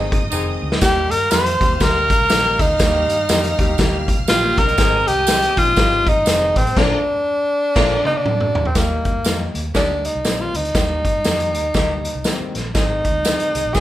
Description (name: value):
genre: uptempo 1960s-style soul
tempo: 121 BPM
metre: 4/4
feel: swing 59% on 8ths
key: Eb major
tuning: A4 = 436 Hz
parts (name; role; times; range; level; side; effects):
- breathy tenor saxophone; melody; 0.0-13.8 s; Bb3 to C5; -18 LUFS; equal; none
- vibraphone with soft mallets; second line; 0.0-6.8 s; C5 to C6; -32 LUFS; equal; none
- warm symphonic violin section; second line; 0.0-8.0 s; Bb4 to F6; -29 LUFS; right 2 dB; none
- warm upright piano; accompaniment; 0.0-13.8 s; D3 to Ab4; -27 LUFS; left 3 dB; none
- vintage muted fingered electric bass; bass; 0.0-13.8 s; F1 to G2; -25 LUFS; equal; none
- clear saxophone section; second line; 0.1-0.8, 6.8-13.8 s; C3 to Ab4; -31 LUFS; equal; none
- vintage drum kit; drums; 0.1-13.8 s; crash cymbal, hi-hat, kick drum, snare drum, toms; -20 LUFS; equal; none
- tambourine; percussion; 0.3-13.8 s; none; -29 LUFS; right 7 dB; none
- electric guitar through a small old amp; riff; 4.4-8.0 s; Bb3 to Eb5; -28 LUFS; left 6 dB; none
room: light reverb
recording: band playing live in one room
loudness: -15 LUFS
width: side -14 dB against mid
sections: 0.0-8.8 A section; 8.8-13.8 B section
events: band accent 0.0-0.8, 6.8-8.8; drum fill 0.3-0.8, 7.8-8.8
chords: 0.0 Ab; 0.8 Eb; 4.8 Ab; 6.8 Bb; 8.8 Eb; 12.7 Ab